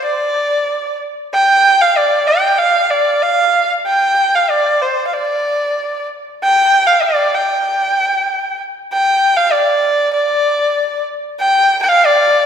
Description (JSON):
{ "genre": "chinese traditional", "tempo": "95 BPM", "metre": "2/4", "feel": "rubato", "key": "unclear", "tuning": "A4 = 440 Hz", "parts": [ { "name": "warm erhu", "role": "solo", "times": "0.0-12.5 s", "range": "C5 to G5", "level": "-12 LUFS", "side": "equal", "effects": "none" } ], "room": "wet concert hall reverb, RT60 2.0 s", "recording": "recorded in a church or concert hall", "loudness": "-12 LUFS", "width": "side -8 dB against mid", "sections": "0.0-8.9 A section; 8.9-12.5 B section", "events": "none", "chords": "none", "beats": "| 0.09 0.72 | 1.34 1.97 | 2.60 3.23 | 3.87 4.51 | 5.14 5.77 | 6.39 7.01 | 7.63 8.27 | 8.92 9.55 | 10.18 10.80 | 11.42 12.05" }